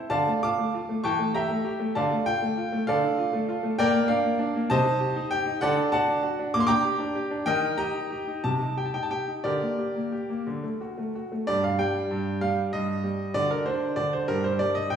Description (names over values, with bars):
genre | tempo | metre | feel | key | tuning
classical-period piano sonatina | 59-66 BPM (dotted quarters) | 6/8 | rubato | G minor from 3.8 s | A4 = 440 Hz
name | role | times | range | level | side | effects
clear baby grand piano | solo | 0.0-15.0 s | G2 to D6 | -24 LUFS | equal | none
room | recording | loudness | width
wet recital hall reverb, RT60 1.8 s | heard from further back in the room, small room ambience | -24 LUFS | side -8 dB against mid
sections
0.0-11.5 A section; 11.5-15.0 B section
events
none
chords
0.1 Dm; 1.0 A5/E; 2.0 Dm; 3.8 Bb; 4.7 Cm; 5.6 D; 6.5 Gm/Bb; 7.5 Eb; 8.4 Cm; 9.4 Gm/D; 10.5 D; 11.5 G5; 13.3 D; 14.3 G5